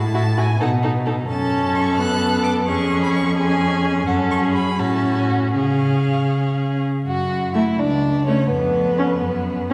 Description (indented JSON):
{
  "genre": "quick classical-period movement for string quartet",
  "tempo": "77-88 BPM (dotted quarters)",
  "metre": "6/8",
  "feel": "rubato",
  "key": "F# minor",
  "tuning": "A4 = 439 Hz",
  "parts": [
    { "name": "warm violin", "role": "melody", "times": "0.0-9.7 s", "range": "B4 to F#6", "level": "-30 LUFS", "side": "equal", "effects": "none" },
    { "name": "rich cello", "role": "bass", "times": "0.0-9.7 s", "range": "C#2 to C#3", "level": "-24 LUFS", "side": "equal", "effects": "none" },
    { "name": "rich violin", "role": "second line", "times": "0.1-9.7 s", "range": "B3 to A4", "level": "-26 LUFS", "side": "equal", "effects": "none" },
    { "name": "clear viola", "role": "accompaniment", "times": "0.1-9.7 s", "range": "A3 to E4", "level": "-25 LUFS", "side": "equal", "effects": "none" }
  ],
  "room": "wet concert hall reverb, RT60 2.3 s",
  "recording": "heard from further back in the room",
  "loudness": "-19 LUFS",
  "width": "mono",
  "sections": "0.0-7.1 A section; 7.1-9.7 B section",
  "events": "none",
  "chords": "0.0 F#m7/A; 0.6 B7; 1.3 F#m; 2.7 C#/E#; 4.1 F#m; 4.8 F#m/A; 5.5 C#; 7.1 F#m; 8.5 C#7/E#; 9.2 F#5",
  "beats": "0.60 | 1.29 1.98 | 2.68 3.37 | 4.07 4.79 | 5.55 6.31 | 7.06 7.78 | 8.50 9.22"
}